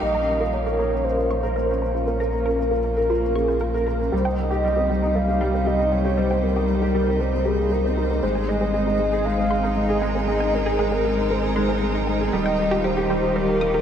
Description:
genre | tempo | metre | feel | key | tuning
electronica | 117 BPM | 4/4 | straight | Bb dorian | A4 = 437 Hz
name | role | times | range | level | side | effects
warm velvety synth lead | melody | 0.0-13.8 s | F4 to F5 | -24 LUFS | equal | chorus, analog delay
dark string quartet | sustained chords | 0.0-13.8 s | Bb2 to F5 | -32 LUFS | right 1 dB | none
analog pluck | arpeggios | 0.0-13.8 s | G4 to Eb6 | -32 LUFS | left 1 dB | none
dark upright piano | riff | 0.0-13.8 s | G3 to Bb4 | -23 LUFS | equal | ensemble chorus, analog delay
warm sub bass | bass | 0.0-13.8 s | Eb1 to C2 | -27 LUFS | equal | none
room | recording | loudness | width
wet cathedral reverb, RT60 6.1 s | dreamy mix soaked in reverb | -19 LUFS | side -8 dB against mid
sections
0.0-13.8 A section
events
fade-in on string quartet 0.0-13.8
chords
0.0 Bbmadd9; 4.1 Cm7; 8.2 Abadd9; 12.3 Ebadd9

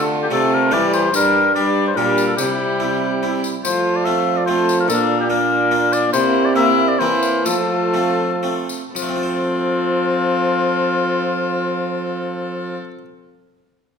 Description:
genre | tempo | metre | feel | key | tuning
classical, renaissance-style consort dance | 112-145 BPM | 3/4 | straight | F major | A4 = 444 Hz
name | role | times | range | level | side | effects
mellow oboe | melody | 0.0-12.8 s | F4 to E5 | -20 LUFS | left 5 dB | none
rich violin | second line | 0.0-12.8 s | D4 to A4 | -26 LUFS | right 5 dB | none
harpsichord | accompaniment | 0.0-13.1 s | G2 to F5 | -25 LUFS | right 2 dB | none
rich viola | accompaniment | 0.0-12.8 s | G3 to C4 | -24 LUFS | left 3 dB | none
clear trombone | bass | 0.0-12.8 s | G2 to F3 | -21 LUFS | right 2 dB | none
tambourine | percussion | 0.9-9.2 s | none | -29 LUFS | left 5 dB | none
room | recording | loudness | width
wet recital hall reverb, RT60 1.3 s | minimal, uncompressed stereo recording | -16 LUFS | side -6 dB against mid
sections
0.0-9.0 A section; 9.0-12.2 B section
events
slowing down 5.5-9.0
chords
0.0 Dm; 1.1 Gm; 2.4 C; 3.6 F; 4.9 Bb; 6.1 C7; 7.5 F

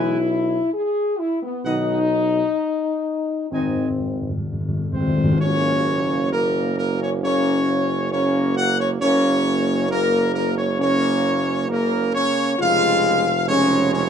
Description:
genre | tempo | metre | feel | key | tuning
classical | 66 BPM | 4/4 | straight | unclear | A4 = 440 Hz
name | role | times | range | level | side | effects
bright trumpet section | melody | 0.0-14.1 s | Bb4 to G#5 | -22 LUFS | left 1 dB | none
bright trombone section | sustained chords | 0.0-14.1 s | Db3 to Eb4 | -27 LUFS | right 5 dB | none
warm French horn section | sustained chords | 0.0-14.0 s | Bb3 to G#4 | -22 LUFS | left 3 dB | none
clear tuba | bass | 0.0-14.1 s | F1 to Cb2 | -24 LUFS | right 5 dB | none
timpani | percussion | 3.5-5.4 s | Ab2 | -23 LUFS | left 1 dB | none
room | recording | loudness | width
moderate studio reverb, RT60 0.6 s | dark, warm production | -18 LUFS | side -8 dB against mid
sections
0.0-5.4 A section; 5.4-14.1 B section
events
timpani fill 3.5-5.4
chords
0.0 E; 1.6 Cb; 3.5 Ab; 5.4 Gb; 12.6 Db/F

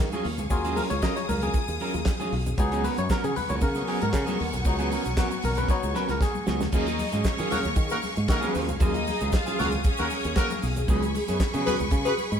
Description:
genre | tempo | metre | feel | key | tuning
disco | 116 BPM | 4/4 | straight | Eb minor | A4 = 440 Hz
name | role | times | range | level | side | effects
clean electric guitar | accompaniment | 0.0-12.4 s | Gb3 to Bb4 | -31 LUFS | right 1 dB | none
clear symphonic string section | sustained chords | 0.0-12.4 s | Cb4 to Eb6 | -33 LUFS | left 1 dB | none
fingered electric bass | bass | 0.0-12.4 s | Cb2 to Eb3 | -30 LUFS | right 1 dB | none
tube shaker | percussion | 0.0-12.4 s | none | -46 LUFS | right 6 dB | none
damped 70s drum kit | drums | 0.1-12.4 s | crash cymbal, handclaps, hi-hat, kick drum, snare drum | -28 LUFS | equal | none
congas | percussion | 0.1-12.3 s | none | -37 LUFS | left 3 dB | none
bright clav | accompaniment | 0.5-6.5 s | Gb3 to Eb5 | -30 LUFS | left 3 dB | none
clear studio string section | second line | 6.7-10.6 s | Bb3 to F5 | -33 LUFS | equal | none
warm horn section | stabs | 7.5-12.1 s | Bb3 to Cb5 | -29 LUFS | left 2 dB | none
room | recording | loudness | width
moderate stone room reverb, RT60 1.0 s | band playing live in one room | -23 LUFS | side -8 dB against mid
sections
0.0-6.7 A section; 6.7-12.4 B section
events
clav solo 0.0-6.7; drum fill 5.7-6.7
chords
0.0 Ebm11; 2.6 Db7sus4; 6.7 Ebm11; 10.9 Db7sus4

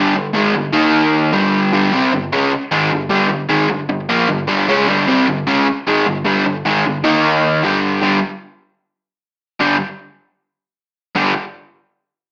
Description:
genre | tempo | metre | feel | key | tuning
rock | 152 BPM | 4/4 | straight | G minor | A4 = 439 Hz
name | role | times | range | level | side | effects
overdriven semi-hollow guitar | solo | 0.0-11.3 s | G2 to Eb4 | -16 LUFS | equal | slapback echo
room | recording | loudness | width
moderate studio reverb, RT60 0.8 s | small speaker sound | -16 LUFS | mono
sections
0.0-8.0 A section; 8.0-12.3 B section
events
none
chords
0.0 G5; 0.7 Eb5; 1.3 G5; 7.0 Eb5; 7.6 G5

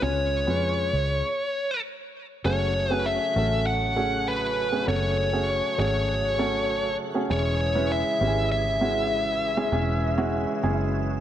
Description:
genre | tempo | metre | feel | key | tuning
piano-driven pop | 99 BPM | 4/4 | straight | F# minor | A4 = 440 Hz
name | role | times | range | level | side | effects
high-gain lead guitar | melody | 0.0-11.2 s | B4 to F#5 | -26 LUFS | left 1 dB | distortion
warm baby grand piano | accompaniment | 0.0-11.2 s | C#3 to B4 | -28 LUFS | right 2 dB | none
vintage muted fingered electric bass | bass | 0.0-11.2 s | E1 to E#2 | -28 LUFS | equal | none
tonewheel organ | sustained chords | 2.5-11.2 s | C#3 to G#4 | -35 LUFS | equal | chorus vibrato, fast rotary speaker
room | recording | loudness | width
moderate concert hall reverb, RT60 2.3 s | none | -22 LUFS | side -11 dB against mid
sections
0.0-2.4 A section; 2.4-11.2 B section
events
stop 1.2-2.4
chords
0.0 C#; 2.4 F#madd9; 7.3 C#m/E

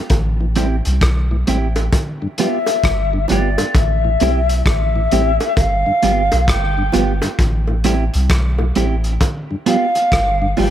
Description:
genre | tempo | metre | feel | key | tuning
roots reggae | 66 BPM | 4/4 | swing 64% on 16ths | A minor | A4 = 440 Hz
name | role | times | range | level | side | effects
soft dub sub bass | bass | 0.1-10.7 s | G1 to C2 | -18 LUFS | equal | none
crunchy breakbeat drum kit | drums | 0.1-10.7 s | hi-hat, kick drum, rim click | -20 LUFS | equal | none
bongos | percussion | 0.1-10.7 s | none | -25 LUFS | right 2 dB | none
mellow tonewheel organ | accompaniment | 0.4-10.7 s | G2 to C4 | -23 LUFS | left 1 dB | none
clean electric guitar | accompaniment | 0.6-10.7 s | B3 to G4 | -22 LUFS | right 6 dB | dub echo
breathy mellow concert flute | melody | 2.4-10.7 s | D5 to G5 | -18 LUFS | left 2 dB | dub echo
room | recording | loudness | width
light reverb | none | -14 LUFS | side -11 dB against mid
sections
0.0-10.7 A section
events
none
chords
0.1 Am7; 1.9 G7; 3.7 Am7; 5.6 G7; 7.4 Am7; 9.2 G7

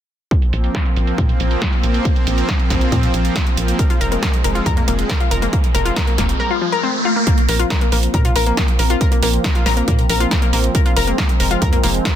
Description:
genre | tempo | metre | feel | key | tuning
uplifting trance | 138 BPM | 4/4 | straight | unclear | A4 = 440 Hz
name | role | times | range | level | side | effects
supersaw pad | sustained chords | 0.3-12.2 s | F3 to C4 | -23 LUFS | right 1 dB | vintage 12-bit sampler grit, sidechain pumping, low-pass filter
electronic kick drum | drums | 0.3-12.1 s | none | -18 LUFS | equal | none
techno drum kit | drums | 0.3-12.1 s | hi-hat, snare drum | -23 LUFS | right 2 dB | low-pass filter on hats, low-pass filter on snare, low-pass filter on room
tight sequencer bass | bass | 0.5-12.0 s | F1 to Bb2 | -20 LUFS | equal | sidechain pumping
analog pluck | arpeggios | 3.8-12.1 s | F3 to Bb4 | -21 LUFS | left 5 dB | chorus, sidechain pumping, tape echo
riser | sound effects | 5.5-7.3 s | none | -23 LUFS | equal | none
room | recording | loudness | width
digital ambience | dense, heavily limited modern master | -14 LUFS | side -10 dB against mid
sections
0.3-7.3 A section; 7.3-12.2 B section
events
filter sweep on analog synth bass 0.3-7.3; riser 5.5-7.3; filter sweep on supersaw synth 7.3-12.2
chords
0.3 Bbsus2; 3.8 Fm; 7.3 Bbsus2; 10.7 Fm

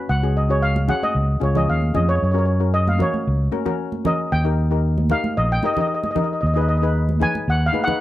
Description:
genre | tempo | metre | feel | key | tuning
calypso | 114 BPM | 4/4 | straight | F# major | A4 = 440 Hz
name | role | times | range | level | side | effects
steel pan | accompaniment | 0.0-8.0 s | C#4 to B4 | -26 LUFS | left 6 dB | none
steel pan | melody | 0.1-8.0 s | C#5 to G#5 | -23 LUFS | equal | none
fingered electric bass | bass | 0.1-7.7 s | A#1 to F#2 | -19 LUFS | equal | none
congas | percussion | 0.8-8.0 s | none | -26 LUFS | right 3 dB | none
room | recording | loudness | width
little or no reverb | dry, close 1970s-style studio recording | -17 LUFS | side -14 dB against mid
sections
0.0-8.0 A section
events
steel pan solo 0.0-8.0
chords
0.1 C#sus4; 1.2 C#add9; 2.2 F#; 4.3 D#; 6.4 G#m/D#

